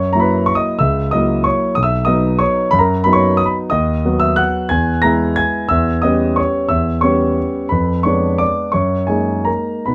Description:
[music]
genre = classical, piano waltz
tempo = 146-198 BPM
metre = 3/4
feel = rubato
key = B major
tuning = A4 = 440 Hz
[part]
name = warm concert grand piano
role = solo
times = 0.0-9.9 s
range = B1 to A#6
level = -16 LUFS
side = equal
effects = none
[sound]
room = little or no reverb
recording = close, detailed microphones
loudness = -16 LUFS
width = mono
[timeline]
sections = 0.0-9.9 A section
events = none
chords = 0.0 F#7; 1.8 B; 3.7 B/D#; 4.7 E; 5.7 C#m7b5/E; 7.7 Fdim7; 8.7 F#69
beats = 0.15 0.49 | 0.81 1.13 1.45 | 1.77 2.08 2.41 | 2.73 3.06 3.39 | 3.72 4.05 4.38 | 4.71 5.04 5.38 | 5.71 6.03 6.38 | 6.71 7.03 7.37 | 7.72 8.06 8.41 | 8.74 9.09 9.47 | 9.88

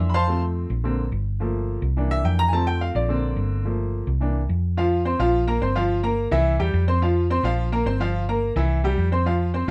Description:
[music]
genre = latin, salsa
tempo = 214 BPM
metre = 4/4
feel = straight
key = F major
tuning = A4 = 440 Hz
[part]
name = bright upright piano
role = accompaniment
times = 0.0-9.7 s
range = D3 to E6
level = -26 LUFS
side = equal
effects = none
[part]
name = hollow-body short-scale fingered electric bass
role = bass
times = 0.0-9.7 s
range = G1 to F2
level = -25 LUFS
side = equal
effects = none
[sound]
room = light reverb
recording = none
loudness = -23 LUFS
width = mono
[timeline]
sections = 0.0-4.8 A section; 4.8-9.7 B section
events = upright piano solo 0.0-4.8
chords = 0.3 F; 0.8 Bbadd9; 1.4 Gm7; 2.0 C7; 2.5 F; 3.1 Bbadd9; 3.7 Gm7; 4.2 C7; 4.8 F5; 5.3 Bbsus2; 5.9 Gm7; 6.5 C; 7.0 F5; 7.6 Bbsus2; 8.1 Gm7; 8.7 C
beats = 0.00 | 0.28 0.56 0.84 1.13 | 1.41 1.69 1.97 2.25 | 2.53 2.81 3.09 3.37 | 3.65 3.93 4.21 4.49 | 4.77 5.05 5.33 5.61 | 5.89 6.17 6.45 6.74 | 7.01 7.30 7.58 7.86 | 8.14 8.42 8.70 8.98 | 9.26 9.54

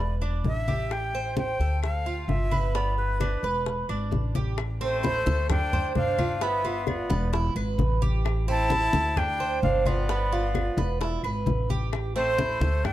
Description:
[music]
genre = latin, Cuban son and guajira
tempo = 131 BPM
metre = 4/4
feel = straight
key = A minor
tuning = A4 = 441 Hz
[part]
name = breathy bright concert flute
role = melody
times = 0.0-12.9 s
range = B4 to A5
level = -29 LUFS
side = left 1 dB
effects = none
[part]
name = Cuban tres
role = arpeggios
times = 0.0-12.9 s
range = B3 to C5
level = -30 LUFS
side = right 4 dB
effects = none
[part]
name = upright bass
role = bass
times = 0.0-12.9 s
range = E1 to D2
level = -28 LUFS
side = equal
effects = none
[part]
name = claves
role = percussion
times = 0.2-12.9 s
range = none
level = -43 LUFS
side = left 8 dB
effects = none
[part]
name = congas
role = percussion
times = 0.2-12.9 s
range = none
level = -30 LUFS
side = left 1 dB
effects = none
[part]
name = bongos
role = percussion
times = 0.5-12.9 s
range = none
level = -37 LUFS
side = left 7 dB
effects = none
[part]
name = clear trumpet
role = second line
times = 4.8-12.9 s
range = A3 to E4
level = -36 LUFS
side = left 2 dB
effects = none
[sound]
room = light reverb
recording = dark, warm production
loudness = -24 LUFS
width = side -14 dB against mid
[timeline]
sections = 0.0-4.6 A section; 4.6-12.9 B section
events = drum fill 4.1-4.6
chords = 0.0 E5; 0.9 Am7; 1.8 Dm; 2.7 G; 3.7 E7; 4.6 Am; 5.5 Dm7; 6.4 G7; 7.3 E; 8.3 Am7; 9.2 Dm7; 10.1 G7; 11.0 E; 11.9 Am7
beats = 0.45 | 0.91 1.37 1.83 2.29 | 2.75 3.21 3.67 4.12 | 4.58 5.04 5.50 5.96 | 6.42 6.88 7.34 7.80 | 8.26 8.71 9.17 9.63 | 10.09 10.55 11.01 11.47 | 11.93 12.38 12.84

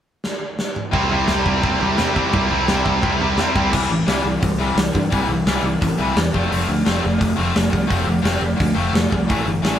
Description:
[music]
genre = punk rock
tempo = 173 BPM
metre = 4/4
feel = straight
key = C major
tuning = A4 = 439 Hz
[part]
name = big rock drum kit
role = drums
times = 0.2-9.7 s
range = crash cymbal, hi-hat, kick drum, snare drum, toms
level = -22 LUFS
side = equal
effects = none
[part]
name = distorted electric guitar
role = riff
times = 0.9-3.7 s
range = C3 to C4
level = -22 LUFS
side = right 6 dB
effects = overdrive
[part]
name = tight distorted guitar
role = riff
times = 0.9-9.8 s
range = A2 to E4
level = -20 LUFS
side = left 2 dB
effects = distortion
[part]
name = picked electric bass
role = bass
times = 0.9-9.8 s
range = F1 to C3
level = -23 LUFS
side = equal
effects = none
[sound]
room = light reverb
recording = band playing live in one room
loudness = -16 LUFS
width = side -10 dB against mid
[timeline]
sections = 0.9-3.7 A section; 3.7-9.8 B section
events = drum fill 0.2-0.9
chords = 0.0 N.C.; 0.9 C; 6.3 F; 9.3 A5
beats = 0.25 0.59 | 0.94 1.29 1.64 1.99 | 2.34 2.68 3.03 3.38 | 3.73 4.08 4.42 4.77 | 5.12 5.46 5.81 6.16 | 6.51 6.86 7.20 7.55 | 7.90 8.24 8.59 8.94 | 9.29 9.63

